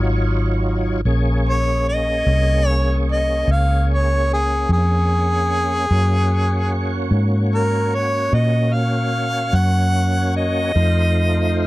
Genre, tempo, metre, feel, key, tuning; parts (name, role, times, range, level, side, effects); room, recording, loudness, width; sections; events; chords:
slow blues; 50 BPM (dotted quarters); 12/8; straight; Bb minor; A4 = 440 Hz
overdriven tonewheel organ; sustained chords; 0.0-11.7 s; Gb3 to Db5; -24 LUFS; equal; slow rotary speaker, chorus vibrato
vintage muted fingered electric bass; bass; 0.0-11.7 s; Ab1 to Bb2; -18 LUFS; equal
warm harmonica; melody; 1.5-11.7 s; Ab4 to Gb5; -21 LUFS; equal; overdrive
little or no reverb; dry, close 1970s-style studio recording; -16 LUFS; side -18 dB against mid
0.0-11.7 A section
0.0 Ebm9; 1.1 Bbm9; 5.9 Gb; 10.7 F7